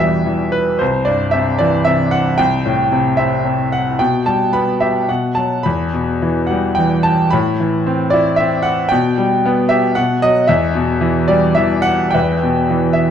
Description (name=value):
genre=classical, lyrical solo piano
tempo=111 BPM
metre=3/4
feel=uneven beats, rubato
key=E minor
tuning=A4 = 438 Hz
part: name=bright grand piano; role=solo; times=0.0-13.1 s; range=C2 to B5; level=-13 LUFS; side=equal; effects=none
room=moderate recital hall reverb, RT60 1.7 s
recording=dark, warm production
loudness=-13 LUFS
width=side -8 dB against mid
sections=0.0-12.1 A section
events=none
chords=0.0 Em; 0.8 C; 2.4 Am/C; 4.0 Emadd11/B; 5.1 B5; 5.7 Em; 7.3 Amadd9; 8.9 Em/B; 10.0 B; 10.5 Em